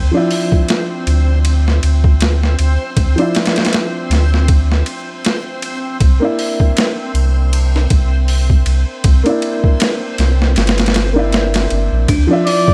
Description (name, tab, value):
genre	trip hop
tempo	79 BPM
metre	4/4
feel	swing 56% on 16ths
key	D minor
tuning	A4 = 440 Hz
part	soft dub sub bass	bass	0.0-12.3 s	G1 to D2	-15 LUFS	equal	none
part	backwards swelling texture	texture	0.0-12.7 s	C4 to C5	-29 LUFS	equal	built-in reverb
part	dark upright piano	accompaniment	0.1-12.7 s	F3 to E5	-22 LUFS	equal	harmonic tremolo, vintage 12-bit sampler grit, tape echo
part	boom bap sampler-style drum kit	drums	0.3-12.7 s	hi-hat, kick drum, ride cymbal, snare drum	-18 LUFS	equal	overdrive, small room ambience
part	music box	arpeggios	12.1-12.7 s	D4 to E4	-22 LUFS	equal	none
part	trumpet with bucket mute	melody	12.5-12.7 s	D5	-16 LUFS	equal	none
room	studio ambience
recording	none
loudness	-14 LUFS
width	mono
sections	0.0-12.1 A section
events	none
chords	0.0 Dmadd9; 6.0 C7; 12.1 Dmadd9